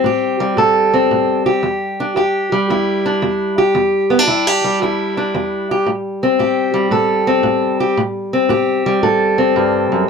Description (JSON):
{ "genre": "blues", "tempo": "114 BPM", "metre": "4/4", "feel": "swing 68% on 8ths", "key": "unclear", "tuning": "A4 = 440 Hz", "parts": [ { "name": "fingerpicked steel-string acoustic guitar", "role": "solo", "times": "0.0-10.1 s", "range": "E2 to A4", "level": "-13 LUFS", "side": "equal", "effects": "none" } ], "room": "moderate booth ambience, RT60 0.2 s", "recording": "close, detailed microphones", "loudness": "-13 LUFS", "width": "side -6 dB against mid", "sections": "0.0-10.1 A section", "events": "none", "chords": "0.0 Am7; 1.6 Em7; 5.9 Am7" }